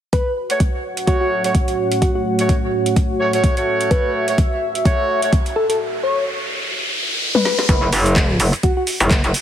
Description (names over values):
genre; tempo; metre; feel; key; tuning
bass house; 127 BPM; 4/4; swing 56% on 16ths; F# minor; A4 = 440 Hz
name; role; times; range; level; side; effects
soft struck synth lead; melody; 0.1-8.8 s; F#4 to C#5; -22 LUFS; left 2 dB; chorus, digital delay
dark analog pad; sustained chords; 1.3-5.8 s; A3 to C#5; -26 LUFS; right 1 dB; chorus, sidechain pumping
electronic kick drum; drums; 0.1-9.2 s; none; -17 LUFS; equal; overdrive
garage drum kit; drums; 0.1-9.4 s; handclaps, hi-hat, rim click, shaker, snare drum, toms; -23 LUFS; equal; overdrive
warbly tape-like pad; texture; 0.1-5.8 s; F#4 to F#5; -24 LUFS; right 1 dB; chorus, built-in reverb, sidechain pumping
bright horn section; stabs; 0.5-5.3 s; A3 to C#5; -21 LUFS; right 1 dB; sidechain pumping, low-pass filter, digital delay
riser; sound effects; 4.8-7.7 s; none; -24 LUFS; equal; none
metallic wobble bass; bass; 7.7-9.3 s; F#1; -16 LUFS; equal; chorus, overdrive, sidechain pumping
room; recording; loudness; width
moderate lush hall reverb, RT60 2.2 s; heavily compressed radio sound; -16 LUFS; side -10 dB against mid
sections
0.1-7.7 A section; 7.7-9.4 B section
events
filter sweep on analog synth pad 0.1-7.7; riser 4.8-7.7; break 5.8-7.7; drum fill 7.3-7.7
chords
0.1 F#m; 7.7 N.C.